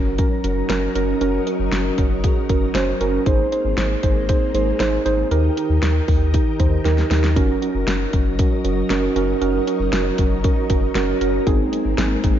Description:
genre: synth-pop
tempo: 117 BPM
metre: 4/4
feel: straight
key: unclear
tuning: A4 = 442 Hz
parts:
  - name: muted felt-like synth keys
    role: accompaniment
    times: 0.0-12.4 s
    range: C4 to C5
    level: -21 LUFS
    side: right 5 dB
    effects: chorus
  - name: ensemble organ-string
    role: sustained chords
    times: 0.0-12.4 s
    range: Eb3 to Bb4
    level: -27 LUFS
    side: left 4 dB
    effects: ensemble chorus
  - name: round analog bass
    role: bass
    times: 0.0-12.4 s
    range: Gb1 to Eb2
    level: -22 LUFS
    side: left 1 dB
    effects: none
  - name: pop drum kit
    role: drums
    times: 0.2-12.4 s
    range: hi-hat, kick drum, snare drum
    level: -21 LUFS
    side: left 1 dB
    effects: none
room: light reverb, digital ambience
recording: dark, warm production, nothing above 7.4 kHz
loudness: -17 LUFS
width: side -10 dB against mid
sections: 0.0-12.4 A section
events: drum fill 6.9-7.4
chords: 0.0 Gb6; 3.3 Abadd9; 5.3 Eb; 7.4 Gb6; 11.5 Abadd9

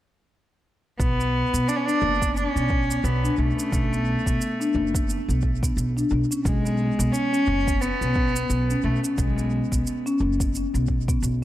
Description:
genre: organic downtempo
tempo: 88 BPM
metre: 4/4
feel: swing 58% on 16ths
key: B dorian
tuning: A4 = 441 Hz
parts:
  - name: warm cello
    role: melody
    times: 1.0-9.8 s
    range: G#3 to D4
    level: -26 LUFS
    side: equal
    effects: tape echo
  - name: upright bass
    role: bass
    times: 1.0-11.4 s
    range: F#1 to B1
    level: -25 LUFS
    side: equal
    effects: sidechain pumping
  - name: electronic kick drum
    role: drums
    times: 1.0-11.2 s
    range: none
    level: -26 LUFS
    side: equal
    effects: none
  - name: shaker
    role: drums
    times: 1.0-11.4 s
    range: none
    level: -35 LUFS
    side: right 4 dB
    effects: tape echo
  - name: marimba with soft mallets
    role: arpeggios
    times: 1.2-11.2 s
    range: B3 to D4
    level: -27 LUFS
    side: left 2 dB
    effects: tape echo
room: light reverb, small room ambience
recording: echo-heavy mix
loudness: -21 LUFS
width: side -14 dB against mid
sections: 1.0-11.4 A section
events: none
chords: 1.0 Bm7; 6.5 C#5

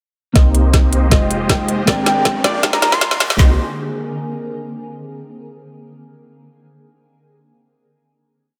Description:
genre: future bass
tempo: 158 BPM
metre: 4/4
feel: half-time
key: C minor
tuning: A4 = 440 Hz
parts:
  - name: clean electric guitar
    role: accompaniment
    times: 0.3-3.6 s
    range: Ab3 to C5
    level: -25 LUFS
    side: equal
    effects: spring reverb, sidechain pumping
  - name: warm velvety synth lead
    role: melody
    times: 0.4-3.5 s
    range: G5 to C6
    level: -24 LUFS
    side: equal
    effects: chorus, sidechain pumping, digital delay
  - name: shimmering ambient pad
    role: sustained chords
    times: 1.7-3.6 s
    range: D3 to Bb3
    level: -32 LUFS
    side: equal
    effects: chorus, built-in reverb, phaser, sidechain pumping
  - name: unison pluck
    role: arpeggios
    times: 0.4-3.5 s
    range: D5 to Eb5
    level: -30 LUFS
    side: equal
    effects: sidechain pumping, tape echo
  - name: supersaw chords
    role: riff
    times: 0.4-3.5 s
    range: Ab3 to Eb5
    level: -27 LUFS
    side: equal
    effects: sidechain pumping, low-pass filter
  - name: warm 808-style bass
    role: bass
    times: 0.4-3.6 s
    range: F1 to C2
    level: -19 LUFS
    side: equal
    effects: sidechain pumping
  - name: trap drum kit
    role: drums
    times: 0.4-3.5 s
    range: handclaps, kick drum, snare drum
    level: -17 LUFS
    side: equal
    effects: none
  - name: trap drum kit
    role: drums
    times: 0.4-3.4 s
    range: hi-hat, snare drum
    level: -20 LUFS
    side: equal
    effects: none
  - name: riser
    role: sound effects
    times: 2.0-3.4 s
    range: none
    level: -33 LUFS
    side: equal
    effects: none
room: light reverb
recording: high-pass filter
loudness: -15 LUFS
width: mono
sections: 0.4-3.4 build; 3.4-4.9 final chord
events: build-up 0.4-3.4; drum fill 0.4-3.4; filter sweep on supersaw synth 0.4-3.4; filter sweep on soft synth lead 0.4-3.4; filter sweep 0.4-3.4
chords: 0.4 Cm7; 1.1 Fm9; 1.9 Abmaj9#11; 2.4 Bb7; 3.4 Cm7

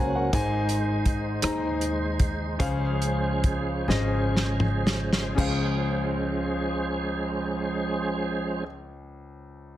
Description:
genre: slow gospel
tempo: 37-56 BPM (dotted quarters)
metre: 6/8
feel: straight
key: Db major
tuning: A4 = 440 Hz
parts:
  - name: warm grand piano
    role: accompaniment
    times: 0.0-9.8 s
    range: Db2 to Bb5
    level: -30 LUFS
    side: left 3 dB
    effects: none
  - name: tonewheel organ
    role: sustained chords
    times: 0.0-8.6 s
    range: Db3 to C5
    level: -29 LUFS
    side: right 2 dB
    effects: slow rotary speaker, overdrive, chorus vibrato
  - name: upright bass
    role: bass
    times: 0.0-8.7 s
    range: Ab1 to Eb2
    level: -30 LUFS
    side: equal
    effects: none
  - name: warm soul drum kit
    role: drums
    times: 0.3-5.6 s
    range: hi-hat, kick drum, rim click, snare drum, splash cymbal, toms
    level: -26 LUFS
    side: equal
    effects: none
room: moderate large studio reverb, RT60 0.8 s, small room reverb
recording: dense, heavily limited modern master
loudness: -24 LUFS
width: side -13 dB against mid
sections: 0.0-5.4 A section; 5.4-9.8 B section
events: slowing down 0.3-5.4; drum fill 3.9-5.4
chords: 0.3 Ab; 2.6 Dbmaj7

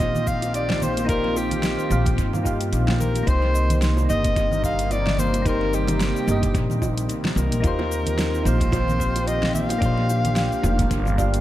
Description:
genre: sunset chillout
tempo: 110 BPM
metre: 4/4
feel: swing 57% on 16ths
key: unclear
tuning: A4 = 440 Hz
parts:
  - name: mellow soprano saxophone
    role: melody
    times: 0.0-11.4 s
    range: G4 to F5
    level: -26 LUFS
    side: left 1 dB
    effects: analog delay
  - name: soft electric-piano-like synth keys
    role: accompaniment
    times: 0.0-11.4 s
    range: Bb3 to F5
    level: -29 LUFS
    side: moving between left 4 dB and right 5 dB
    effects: chorus, auto-pan, analog delay
  - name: lush unison pad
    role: sustained chords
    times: 0.0-11.4 s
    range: C3 to G4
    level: -30 LUFS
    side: left 1 dB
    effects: chorus
  - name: kalimba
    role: arpeggios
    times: 0.0-11.4 s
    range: Bb3 to F5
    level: -32 LUFS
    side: equal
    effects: analog delay
  - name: upright bass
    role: bass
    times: 0.0-11.4 s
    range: F1 to G2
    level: -23 LUFS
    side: equal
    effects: none
  - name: deep house drum kit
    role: drums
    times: 0.0-11.4 s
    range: cabasa, hi-hat, snare drum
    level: -30 LUFS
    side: equal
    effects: overdrive, analog delay
  - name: electronic kick drum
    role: drums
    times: 0.0-11.3 s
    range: none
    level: -25 LUFS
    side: equal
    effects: overdrive
  - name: congas and bongos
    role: percussion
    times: 0.1-11.2 s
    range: none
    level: -32 LUFS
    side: right 2 dB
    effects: none
room: moderate spring reverb, RT60 1.7 s, studio reverb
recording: echo-heavy mix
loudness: -19 LUFS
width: side -14 dB against mid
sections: 0.0-11.4 A section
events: none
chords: 0.0 Eb69; 3.3 Cm7; 7.6 Eb69; 9.8 Bb6

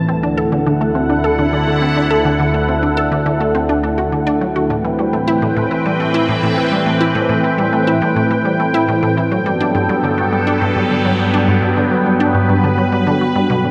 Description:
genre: ambient, sequencer-driven space music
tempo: 104 BPM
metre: 4/4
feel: straight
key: A dorian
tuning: A4 = 441 Hz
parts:
  - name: sweeping resonant pad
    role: sustained chords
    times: 0.0-13.7 s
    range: D2 to G5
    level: -18 LUFS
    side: equal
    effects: chorus
  - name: resonant blip pluck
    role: riff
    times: 0.1-13.7 s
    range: G2 to A4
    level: -20 LUFS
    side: equal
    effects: chorus, tape echo
room: wet cathedral reverb, RT60 5.3 s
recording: in a vast, echoing space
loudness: -16 LUFS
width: mono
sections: 0.0-13.7 A section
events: none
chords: 0.1 Dadd9; 4.7 Am7; 9.3 Gmaj7

